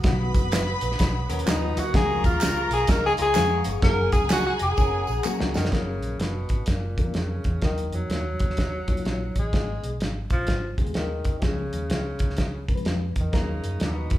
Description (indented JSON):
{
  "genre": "uptempo 1960s-style soul",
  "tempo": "126 BPM",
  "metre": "4/4",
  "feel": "swing 64% on 8ths",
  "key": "F# major",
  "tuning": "A4 = 440 Hz",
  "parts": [
    { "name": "warm studio string section", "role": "second line", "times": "0.0-5.5 s", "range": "G#4 to B5", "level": "-31 LUFS", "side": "equal", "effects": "none" },
    { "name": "reed electric piano", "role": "accompaniment", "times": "0.0-13.9 s", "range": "D3 to B4", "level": "-33 LUFS", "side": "left 3 dB", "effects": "fast tremolo" },
    { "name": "percussive tonewheel organ", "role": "sustained chords", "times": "0.0-5.7, 13.3-14.2 s", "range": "D#4 to D#6", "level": "-36 LUFS", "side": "equal", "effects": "slow rotary speaker" },
    { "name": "vintage muted fingered electric bass", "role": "bass", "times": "0.0-14.2 s", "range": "E#1 to F#2", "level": "-29 LUFS", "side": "equal", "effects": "none" },
    { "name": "cloth-damped thuddy drum kit", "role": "drums", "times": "0.0-14.2 s", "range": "hi-hat, kick drum, snare drum", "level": "-25 LUFS", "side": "equal", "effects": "none" },
    { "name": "tambourine and handclaps", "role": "percussion", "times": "0.4-5.6 s", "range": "none", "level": "-36 LUFS", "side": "right 4 dB", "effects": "none" },
    { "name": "electric guitar through a small old amp", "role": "riff", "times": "1.3-5.7 s", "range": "G#3 to B4", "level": "-33 LUFS", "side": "left 6 dB", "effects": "spring reverb" },
    { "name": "warm tenor saxophone", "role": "melody", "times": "1.5-14.2 s", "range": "A#2 to A#4", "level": "-28 LUFS", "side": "left 1 dB", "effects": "none" }
  ],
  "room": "moderate large studio reverb, RT60 1.0 s",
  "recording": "band playing live in one room",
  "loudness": "-22 LUFS",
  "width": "side -14 dB against mid",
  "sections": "0.0-5.7 A section; 5.7-14.2 B section",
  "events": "tenor saxophone solo 0.0-5.7; drum fill 4.8-5.7",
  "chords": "0.0 B; 1.9 C#; 3.8 F#add9; 5.7 F#; 7.6 D#m; 9.5 G#m; 11.4 C#; 13.3 D#m"
}